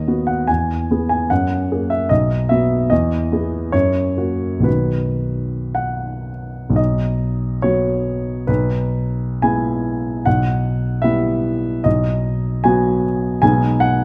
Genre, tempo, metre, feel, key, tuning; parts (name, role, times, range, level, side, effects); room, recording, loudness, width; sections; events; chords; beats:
classical, romantic character piece for solo piano; 51-78 BPM; 2/4; rubato; B major; A4 = 440 Hz
warm grand piano; solo; 0.0-14.0 s; B1 to G#5; -19 LUFS; equal
moderate recital hall reverb, RT60 1.7 s; close, detailed microphones; -19 LUFS; mono
0.0-6.8 A section; 6.8-14.0 B section
0.5 E; 1.3 F#add9; 2.1 B; 2.9 E; 3.7 F#; 4.7 B; 8.5 E/B; 10.3 Em/B; 11.9 B
0.49 | 1.30 2.10 | 2.91 3.74 | 4.66 5.78 | 6.78 7.64 | 8.48 9.42 | 10.26 11.04 | 11.85 12.65 | 13.42